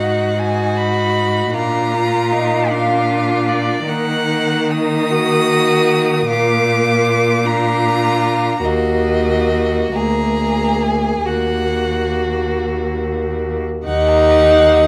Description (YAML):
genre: classical, slow romantic movement for string quartet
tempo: 45-52 BPM (dotted quarters)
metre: 6/8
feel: rubato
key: Eb minor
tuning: A4 = 440 Hz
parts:
  - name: rich violin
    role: melody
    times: 0.0-14.9 s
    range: D5 to Gb6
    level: -24 LUFS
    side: equal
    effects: none
  - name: rich violin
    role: second line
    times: 0.0-14.9 s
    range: Eb4 to Gb5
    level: -23 LUFS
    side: equal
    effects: none
  - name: warm viola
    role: accompaniment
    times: 0.0-14.9 s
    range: Bb3 to F4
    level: -20 LUFS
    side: equal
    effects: none
  - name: bright cello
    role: bass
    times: 0.0-14.9 s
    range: D2 to Eb3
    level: -22 LUFS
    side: equal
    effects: none
room: moderate recital hall reverb, RT60 1.4 s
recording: none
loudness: -16 LUFS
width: mono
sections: 0.0-13.9 A section; 13.9-14.9 A section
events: none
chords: 0.0 Abm7; 1.5 Bb; 3.9 Ebm; 6.3 Bb; 8.6 Ebm; 10.0 Bb7/D; 11.3 Ebm